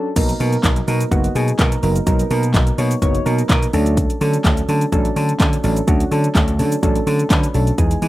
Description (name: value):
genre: dance-pop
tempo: 126 BPM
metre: 4/4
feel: straight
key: unclear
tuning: A4 = 440 Hz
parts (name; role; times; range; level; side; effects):
- soft electric-piano-like synth keys; accompaniment; 0.0-8.1 s; E3 to C#5; -20 LUFS; right 1 dB; chorus, sidechain pumping
- vintage slap bass; bass; 0.2-8.1 s; F#1 to E3; -19 LUFS; equal; sidechain pumping
- pop drum kit; drums; 0.2-8.1 s; crash cymbal, handclaps, hi-hat, kick drum, shaker, snare drum; -18 LUFS; equal; none
room: little or no reverb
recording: rough home demo mix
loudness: -15 LUFS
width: side -16 dB against mid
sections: 0.2-8.1 A section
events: break 0.0; drop 0.2-8.1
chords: 0.2 Bmaj7; 3.7 Dmaj7